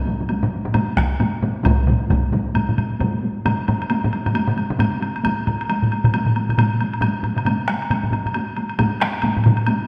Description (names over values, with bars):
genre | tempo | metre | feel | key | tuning
japanese traditional, taiko drum ensemble | 134 BPM | 4/4 | swing 60% on 16ths | none | none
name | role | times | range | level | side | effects
taiko ensemble | percussion | 0.1-9.8 s | none | -26 LUFS | equal | none
taiko ensemble | percussion | 0.1-9.6 s | none | -25 LUFS | equal | none
woodblock | percussion | 0.3-9.8 s | none | -29 LUFS | equal | none
taiko ensemble | percussion | 1.0-2.2 s | none | -24 LUFS | equal | none
taiko ensemble | percussion | 1.7-9.6 s | none | -23 LUFS | equal | none
room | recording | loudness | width
wet scoring stage reverb, RT60 1.8 s | dark, warm production | -20 LUFS | mono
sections
0.0-3.5 A section; 3.5-9.9 B section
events
speeding up 0.0-9.9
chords
none